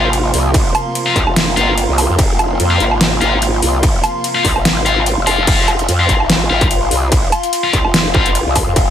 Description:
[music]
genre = heavy wobble dubstep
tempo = 146 BPM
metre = 4/4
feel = swing 54% on 16ths, half-time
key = F minor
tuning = A4 = 439 Hz
[part]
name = warm chamber string section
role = sustained chords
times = 0.0-5.5 s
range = C3 to Bb3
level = -24 LUFS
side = right 2 dB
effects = sidechain pumping, low-pass filter
[part]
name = scooped high-gain guitar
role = stabs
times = 0.0-8.3 s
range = C4 to F5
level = -18 LUFS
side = left 4 dB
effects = distortion, digital delay
[part]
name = growl bass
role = bass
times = 0.0-8.9 s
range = F1 to F2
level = -16 LUFS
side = equal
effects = chorus, overdrive
[part]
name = warbly tape-like pad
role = texture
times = 0.0-8.9 s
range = F4 to C6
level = -21 LUFS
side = left 1 dB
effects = chorus, built-in reverb, sidechain pumping
[part]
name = dubstep drum kit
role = drums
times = 0.1-8.9 s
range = crash cymbal, hi-hat, snare drum, woodblock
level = -18 LUFS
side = right 1 dB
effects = overdrive
[part]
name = electronic kick drum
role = drums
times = 0.5-8.8 s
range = none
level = -16 LUFS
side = equal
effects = distortion
[sound]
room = light reverb, digital ambience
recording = none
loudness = -11 LUFS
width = side -10 dB against mid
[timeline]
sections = 0.0-5.5 A section; 5.5-8.9 A section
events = drop 0.0-5.5, 5.5-8.9; kick drops out 5.1-5.5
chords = 0.0 F5

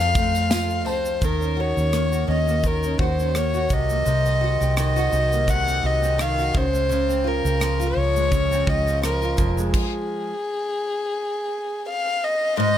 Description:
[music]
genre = acoustic pop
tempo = 84 BPM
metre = 4/4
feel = swing 55% on 16ths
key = unclear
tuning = A4 = 440 Hz
[part]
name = dark violin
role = melody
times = 0.0-12.8 s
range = Ab4 to Gb5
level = -23 LUFS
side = left 2 dB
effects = digital delay
[part]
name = clear upright piano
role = accompaniment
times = 0.0-1.2 s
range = C4 to A5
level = -35 LUFS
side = left 4 dB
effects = none
[part]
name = nylon-string guitar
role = accompaniment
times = 0.0-12.8 s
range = F2 to Gb4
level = -26 LUFS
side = equal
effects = double-tracked left and right
[part]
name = vintage muted fingered electric bass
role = bass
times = 0.0-9.7 s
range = F1 to F2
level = -24 LUFS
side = equal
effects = none
[part]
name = modern studio drum kit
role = drums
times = 0.0-9.9 s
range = crash cymbal, kick drum, rim click, shaker, snare drum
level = -25 LUFS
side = equal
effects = none
[part]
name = tambourine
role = percussion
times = 0.1-1.0 s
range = none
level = -38 LUFS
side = right 10 dB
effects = none
[sound]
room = small room reverb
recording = none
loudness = -20 LUFS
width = side -10 dB against mid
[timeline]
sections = 0.0-1.2 A section; 1.2-12.6 B section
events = upright piano fill 0.2-1.2; stop 9.7-12.6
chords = 0.0 F; 1.2 Ebm7; 3.7 Cm7b5; 6.5 Dbmaj7; 9.4 Fm

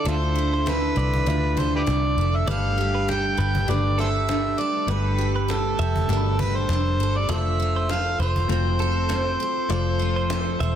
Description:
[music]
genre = acoustic pop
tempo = 100 BPM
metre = 4/4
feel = swing 55% on 16ths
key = unclear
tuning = A4 = 440 Hz
[part]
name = overdriven harmonica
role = melody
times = 0.0-10.8 s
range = F4 to G5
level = -26 LUFS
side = equal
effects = digital delay
[part]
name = bright upright piano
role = accompaniment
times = 0.0-10.8 s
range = A3 to B5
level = -33 LUFS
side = left 7 dB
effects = none
[part]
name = picked steel-string acoustic guitar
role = accompaniment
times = 0.0-10.8 s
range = D3 to A4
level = -27 LUFS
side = right 1 dB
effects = double-tracked left and right
[part]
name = direct-recorded clean electric guitar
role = arpeggios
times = 0.1-10.8 s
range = A4 to E5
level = -34 LUFS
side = right 6 dB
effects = spring reverb, digital delay
[part]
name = vintage muted fingered electric bass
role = bass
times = 0.1-10.8 s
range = E1 to D2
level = -24 LUFS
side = equal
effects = none
[part]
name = cajon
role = drums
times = 0.1-10.7 s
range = none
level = -34 LUFS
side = equal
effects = none
[sound]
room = light reverb, small room ambience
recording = dense, heavily limited modern master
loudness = -20 LUFS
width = side -9 dB against mid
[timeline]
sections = 0.0-10.8 A section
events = none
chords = 0.0 Dmadd9; 2.5 Gadd9; 7.3 F

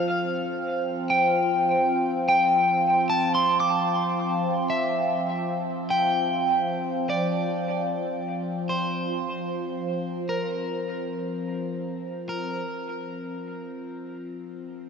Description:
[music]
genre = ambient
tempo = 75 BPM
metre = 3/4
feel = straight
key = unclear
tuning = A4 = 440 Hz
[part]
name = electric guitar at the edge of break-up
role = arpeggios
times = 0.0-14.2 s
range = Bb4 to D6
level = -25 LUFS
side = equal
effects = diffuse ambient delay, shimmer reverb
[part]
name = overtone-sweeping drone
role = drone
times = 0.0-14.9 s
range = F3 to C4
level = -27 LUFS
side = equal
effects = chorus, built-in reverb, phaser
[sound]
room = wet lush hall reverb, RT60 2.7 s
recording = none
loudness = -23 LUFS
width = side -6 dB against mid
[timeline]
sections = 0.0-14.9 A section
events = fade-out on clean electric guitar 0.0-14.9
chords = 0.0 Fmaj7(no3); 7.1 Gm7/F (rootless)

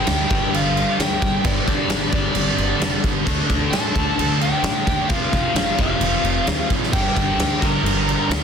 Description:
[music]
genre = hard rock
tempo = 131 BPM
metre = 4/4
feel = straight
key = G minor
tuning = A4 = 436 Hz
[part]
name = biting lead guitar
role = melody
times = 0.0-8.4 s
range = D5 to Bb5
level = -26 LUFS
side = left 2 dB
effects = overdrive
[part]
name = octave-fuzz lead guitar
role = second line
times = 0.0-8.4 s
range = D4 to Bb4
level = -29 LUFS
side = right 3 dB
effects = distortion
[part]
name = airy breathy pad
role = sustained chords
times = 0.0-8.4 s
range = F3 to D5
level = -35 LUFS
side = left 2 dB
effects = none
[part]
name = cranked stack guitar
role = riff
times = 0.0-8.4 s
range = F2 to D4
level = -26 LUFS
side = left 13 dB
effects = overdrive, phaser
[part]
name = overdriven electric guitar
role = riff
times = 0.0-8.4 s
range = F2 to D4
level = -27 LUFS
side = right 11 dB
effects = none
[part]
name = scooped high-gain guitar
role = riff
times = 0.0-8.4 s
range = F2 to D4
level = -28 LUFS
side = left 1 dB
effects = distortion
[part]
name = upright bass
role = bass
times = 0.1-8.4 s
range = F1 to A2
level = -26 LUFS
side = equal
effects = none
[part]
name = huge arena drum kit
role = drums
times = 0.1-8.4 s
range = crash cymbal, kick drum, snare drum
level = -21 LUFS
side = right 1 dB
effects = none
[sound]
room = light reverb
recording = dense, heavily limited modern master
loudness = -17 LUFS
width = side -7 dB against mid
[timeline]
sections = 0.0-8.4 A section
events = none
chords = 0.0 G5; 3.3 D5; 5.1 F5; 6.9 Gm

